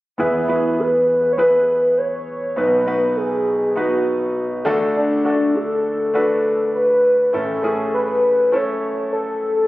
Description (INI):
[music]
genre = piano-driven pop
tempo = 101 BPM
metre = 4/4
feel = swing 56% on 16ths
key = E major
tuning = A4 = 440 Hz
[part]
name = warm velvety synth lead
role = melody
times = 0.2-9.7 s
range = D4 to C#5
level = -18 LUFS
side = equal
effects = chorus
[part]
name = bright concert grand piano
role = accompaniment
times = 0.2-9.7 s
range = A1 to B4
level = -21 LUFS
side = equal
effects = none
[sound]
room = wet concert hall reverb, RT60 2.0 s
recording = recorded on a phone in the room, studio reverb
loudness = -16 LUFS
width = side -17 dB against mid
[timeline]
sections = 0.2-9.7 A section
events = none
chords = 0.2 E; 2.6 B; 4.7 D; 7.3 A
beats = | 0.19 0.79 1.38 1.98 | 2.57 3.17 3.76 4.36 | 4.95 5.55 6.14 6.74 | 7.33 7.93 8.52 9.12